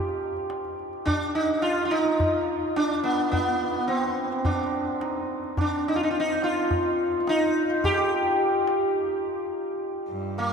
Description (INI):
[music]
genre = Persian modal ensemble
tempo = 106 BPM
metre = 4/4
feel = straight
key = unclear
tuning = A4 = 440 Hz
[part]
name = sitar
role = melody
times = 0.0-10.5 s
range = Bb3 to G4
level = -25 LUFS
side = equal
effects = none
[part]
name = santur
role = second line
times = 0.0-10.5 s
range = Bb3 to Ab4+45c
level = -28 LUFS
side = right 1 dB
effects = none
[part]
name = tombak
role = percussion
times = 0.1-8.9 s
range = none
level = -32 LUFS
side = left 1 dB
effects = none
[part]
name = clear cello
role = drone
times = 10.1-10.5 s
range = G2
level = -32 LUFS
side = right 1 dB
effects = none
[sound]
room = wet cathedral reverb, RT60 5.7 s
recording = in a vast, echoing space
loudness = -23 LUFS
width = side -6 dB against mid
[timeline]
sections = 0.0-1.1 A section; 1.1-10.1 B section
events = stop 9.0-10.1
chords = none